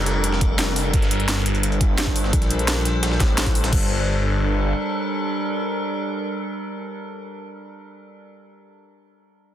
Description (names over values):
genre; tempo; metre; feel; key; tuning
dark technical drum and bass; 172 BPM; 4/4; straight; G minor; A4 = 443 Hz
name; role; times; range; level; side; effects
metallic inharmonic drone; sustained chords; 0.0-7.3 s; G3 to C5; -26 LUFS; equal; chorus, built-in reverb, sidechain pumping
phased detuned saw bass; bass; 0.0-4.7 s; F1 to A1; -22 LUFS; equal; phaser, overdrive
breakbeat sampler-style drum kit; drums; 0.1-3.7 s; hi-hat, snare drum; -31 LUFS; equal; high-pass filter on hats, high-pass filter on snare, high-pass filter on room
drum and bass drum kit; drums; 0.1-3.8 s; crash cymbal, hi-hat, snare drum; -26 LUFS; equal; overdrive
electronic kick drum; drums; 0.4-3.8 s; none; -20 LUFS; equal; overdrive
metallic wobble bass; bass; 2.3-3.2 s; Bb1; -22 LUFS; equal; distortion, chorus
room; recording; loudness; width
light reverb; dense, heavily limited modern master; -19 LUFS; side -11 dB against mid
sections
0.0-3.7 A section; 3.7-6.5 B section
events
drop 0.0-3.7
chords
0.0 Gmadd9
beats
0.24 0.59 | 0.94 1.28 1.63 1.98 | 2.33 2.68 3.03 3.38 | 3.73 4.08 4.42 4.77 | 5.12 5.47 5.82 6.17